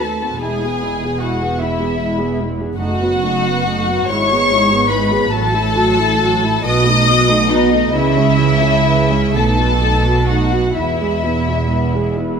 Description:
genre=classical, slow romantic movement for string orchestra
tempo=40-52 BPM (dotted quarters)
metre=6/8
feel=rubato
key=E major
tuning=A4 = 436 Hz
part: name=dark studio violin section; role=melody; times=0.0-12.2 s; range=D#5 to D#6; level=-19 LUFS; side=left 4 dB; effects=none
part: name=warm symphonic violin section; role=second line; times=0.0-12.1 s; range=D#4 to D#5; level=-20 LUFS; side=left 3 dB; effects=none
part: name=dark symphonic viola section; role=accompaniment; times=0.0-12.4 s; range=E3 to A4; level=-19 LUFS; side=right 2 dB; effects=none
part: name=dark symphonic double bass section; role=bass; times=0.0-12.4 s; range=E1 to D#2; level=-20 LUFS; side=right 3 dB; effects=none
part: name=warm symphonic cello section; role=bass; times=0.0-12.4 s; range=D#2 to C#3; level=-21 LUFS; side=right 4 dB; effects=none
room=moderate scoring stage reverb, RT60 1.8 s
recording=none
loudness=-13 LUFS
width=side -6 dB against mid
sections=0.0-12.4 A section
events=none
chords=0.4 E; 2.8 B7/F#; 4.1 E/G#; 5.3 F#m7/A; 6.7 B7; 7.9 C#m; 9.4 B7; 10.8 E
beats=| 0.42 1.61 | 2.79 4.10 | 5.32 6.67 | 7.94 9.36 | 10.75 12.17

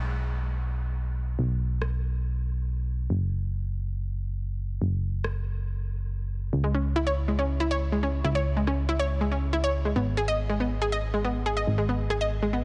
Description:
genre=uplifting trance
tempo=140 BPM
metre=4/4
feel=straight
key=unclear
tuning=A4 = 441 Hz
part: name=solid FM bass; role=bass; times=0.0-12.6 s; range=F#1 to C#2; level=-30 LUFS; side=equal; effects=none
part: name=electronic rim click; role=drums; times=1.8-1.9, 5.2-5.3, 8.7-8.8, 12.1-12.2 s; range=none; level=-42 LUFS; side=equal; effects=none
part: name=analog pluck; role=arpeggios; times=6.6-12.6 s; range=G#3 to D#5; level=-30 LUFS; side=equal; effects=chorus, tape echo
room=light reverb, digital ambience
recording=heavily compressed radio sound, nothing above 10.5 kHz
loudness=-28 LUFS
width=mono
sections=0.0-12.6 A section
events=none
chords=0.0 N.C.; 6.5 C#5; 10.0 G#5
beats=0.10 0.53 0.96 | 1.39 1.82 2.24 2.67 | 3.10 3.53 3.96 4.39 | 4.82 5.24 5.67 6.10 | 6.53 6.96 7.39 7.82 | 8.24 8.67 9.10 9.53 | 9.96 10.39 10.82 11.24 | 11.67 12.10 12.53

